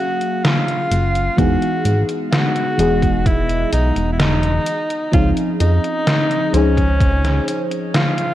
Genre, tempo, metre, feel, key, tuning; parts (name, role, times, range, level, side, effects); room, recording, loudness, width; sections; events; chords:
vaporwave; 64 BPM; 4/4; straight; A4 = 439 Hz
bright alto saxophone; melody; 0.0-8.3 s; Db4 to Gb4; -21 LUFS; equal; tape echo
FM electric piano with soft pad layer; accompaniment; 0.0-8.3 s; E3 to F5; -21 LUFS; left 1 dB; wide subtle chorus
detuned 8-bit digital drum machine; drums; 0.2-8.3 s; hi-hat, snare drum; -19 LUFS; equal; gated reverb
chorused synth bass; bass; 0.9-7.4 s; E1 to F2; -18 LUFS; equal
electronic kick drum; drums; 1.4-7.2 s; -18 LUFS; equal
light reverb; cassette tape; -15 LUFS; side -13 dB against mid
0.0-8.3 A section
0.0 Gbmaj9; 1.4 Emaj7; 4.7 Dbmaj9